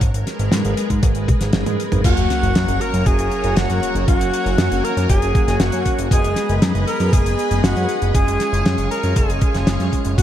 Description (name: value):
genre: synthwave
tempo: 118 BPM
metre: 4/4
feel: straight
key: F# major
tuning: A4 = 437 Hz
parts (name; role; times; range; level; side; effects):
- string machine, full ensemble; sustained chords; 0.0-10.2 s; G#3 to C#6; -26 LUFS; equal; ensemble chorus, vintage 12-bit sampler grit, sidechain pumping
- fat analog bass; bass; 0.0-10.2 s; F#1 to G#2; -20 LUFS; equal; tube saturation, sidechain pumping
- damped 70s drum kit; drums; 0.0-10.2 s; crash cymbal, hi-hat, snare drum, toms; -23 LUFS; equal; none
- electronic kick drum; drums; 0.0-10.2 s; none; -17 LUFS; equal; none
- breathy alto saxophone; melody; 2.0-10.2 s; F#4 to A#4; -24 LUFS; right 1 dB; tape echo
- airy dreamy lead; second line; 2.0-10.2 s; F#5 to A#5; -27 LUFS; equal; chorus, digital delay
- mellow synth brass; stabs; 2.0-10.2 s; F#3 to G#4; -25 LUFS; left 1 dB; chorus
- sub drop; sound effects; 2.0-4.1 s; none; -26 LUFS; equal; none
room: light reverb, small room ambience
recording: dark, warm production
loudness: -15 LUFS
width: side -11 dB against mid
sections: 0.0-2.0 A section; 2.0-10.2 B section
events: drum fill 1.3-2.0; kick drops out 1.5-2.0; impact 2.0-4.1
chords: 0.0 G#madd9; 2.0 F#; 6.1 G#m/F#; 8.1 C#/F#